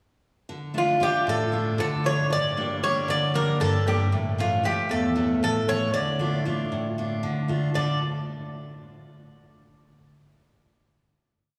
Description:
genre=greek folk, Greek bouzouki band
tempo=232 BPM (eighths)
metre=7/8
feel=straight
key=D harmonic minor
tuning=A4 = 441 Hz
part: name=picked steel-string acoustic guitar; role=accompaniment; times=0.5-8.0 s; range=E2 to A4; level=-28 LUFS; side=equal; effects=none
part: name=Greek bouzouki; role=melody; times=0.8-8.0 s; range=F4 to D5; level=-28 LUFS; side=equal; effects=none
room=wet church reverb, RT60 3.5 s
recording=recorded in a church or concert hall, studio ambience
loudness=-25 LUFS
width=mono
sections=0.5-7.7 A section; 7.7-9.6 final chord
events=none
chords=0.5 Dm; 2.3 Gm; 4.1 A; 5.9 Dm

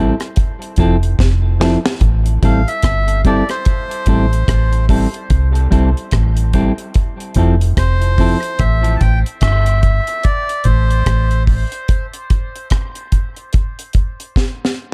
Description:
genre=dub reggae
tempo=73 BPM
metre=4/4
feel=swing 59% on 16ths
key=A minor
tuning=A4 = 438 Hz
part: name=semi-hollow electric guitar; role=accompaniment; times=0.0-8.4 s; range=F3 to A4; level=-22 LUFS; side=equal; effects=dub echo
part: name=deep dub fingered electric bass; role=bass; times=0.0-11.6 s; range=F1 to C2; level=-16 LUFS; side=equal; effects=none
part: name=deep reggae drum kit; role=drums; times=0.2-14.8 s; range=hi-hat, kick drum, rim click, snare drum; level=-18 LUFS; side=equal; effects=none
part: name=melodica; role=melody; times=2.4-11.4 s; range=C5 to A5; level=-26 LUFS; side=equal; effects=dub echo
room=studio reverb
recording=none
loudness=-15 LUFS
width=mono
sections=0.0-14.9 A section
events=drum fill 1.2-2.0, 14.4-14.9; break 11.9-14.9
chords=0.4 Fmaj7; 2.0 Am7; 5.3 C6; 7.0 Fmaj7; 8.6 Am7; 11.9 N.C.

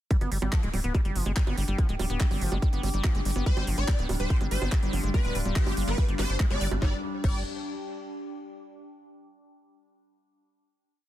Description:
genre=psychedelic trance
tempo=143 BPM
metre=4/4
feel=straight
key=unclear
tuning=A4 = 437 Hz
part: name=liquid acid bass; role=riff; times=0.1-7.4 s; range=F3 to D4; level=-35 LUFS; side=equal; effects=chorus, auto-pan, sidechain pumping, ping-pong delay
part: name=electronic kick drum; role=drums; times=0.1-7.3 s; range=none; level=-26 LUFS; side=equal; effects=none
part: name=garage drum kit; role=drums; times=0.1-7.3 s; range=bongos, crash cymbal, handclaps, hi-hat, snare drum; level=-35 LUFS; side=right 3 dB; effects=none
part: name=warbly tape-like pad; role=texture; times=0.9-8.5 s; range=D4 to D6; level=-39 LUFS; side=left 1 dB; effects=chorus, built-in reverb, tremolo, sidechain pumping
part: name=tight sequencer bass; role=bass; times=0.2-7.4 s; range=D1 to Ab1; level=-29 LUFS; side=equal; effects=none
part: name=swarming rave lead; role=melody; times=3.5-7.4 s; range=G4 to D5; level=-35 LUFS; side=equal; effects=chorus, phaser, sidechain pumping, ping-pong delay
part: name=overtone-sweeping drone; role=sustained chords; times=4.1-6.9 s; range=G3 to D4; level=-38 LUFS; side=left 3 dB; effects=chorus, built-in reverb, phaser, sidechain pumping
room=little or no reverb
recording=dense, heavily limited modern master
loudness=-25 LUFS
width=side -13 dB against mid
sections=0.1-6.8 drop; 6.8-8.5 final chord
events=drop 0.1-6.8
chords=0.1 G5

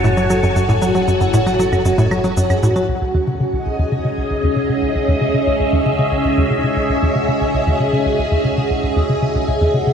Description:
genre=ambient, sequencer-driven space music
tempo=116 BPM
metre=4/4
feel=straight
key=unclear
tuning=A4 = 441 Hz
part: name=string machine, full ensemble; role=sustained chords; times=0.0-9.9 s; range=C#4 to A5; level=-18 LUFS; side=equal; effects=phaser, ensemble chorus
part: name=vibraphone with medium mallets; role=arpeggios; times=0.0-9.9 s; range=E4 to F#5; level=-25 LUFS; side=left 2 dB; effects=auto-pan, tape echo
part: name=hollow square pluck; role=riff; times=0.0-9.9 s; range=C#2 to F#3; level=-18 LUFS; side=equal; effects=chorus, tape echo
part: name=fat analog bass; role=bass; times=0.0-2.9 s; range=F#1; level=-27 LUFS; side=equal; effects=none
part: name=cabasa and claves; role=percussion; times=0.0-2.9 s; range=none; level=-33 LUFS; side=right 3 dB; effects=tape echo
room=wet cathedral reverb, RT60 5.6 s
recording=in a vast, echoing space, cassette tape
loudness=-14 LUFS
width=side -7 dB against mid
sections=0.0-2.9 A section; 2.9-9.9 B section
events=filter sweep on vibraphone 0.0-2.9; fade-in on vibraphone 2.9-9.9; filter sweep on synth arpeggio sound 2.9-9.9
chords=0.0 F#m; 2.9 C#m

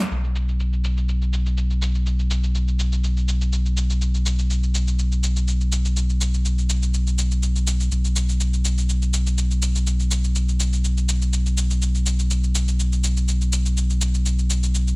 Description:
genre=acid house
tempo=123 BPM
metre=4/4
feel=swing 53% on 16ths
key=unclear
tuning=A4 = 440 Hz
part: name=cabasa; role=drums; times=0.0-15.0 s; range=none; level=-28 LUFS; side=equal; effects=low-pass filter on hats, low-pass filter on perc, low-pass filter on snare, low-pass filter on toms, low-pass filter on room
part: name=saturated sub bass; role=bass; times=0.1-15.0 s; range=B1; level=-19 LUFS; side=equal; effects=none
room=little or no reverb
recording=heavily compressed radio sound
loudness=-19 LUFS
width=side -31 dB against mid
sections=0.1-15.0 A section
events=none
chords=none

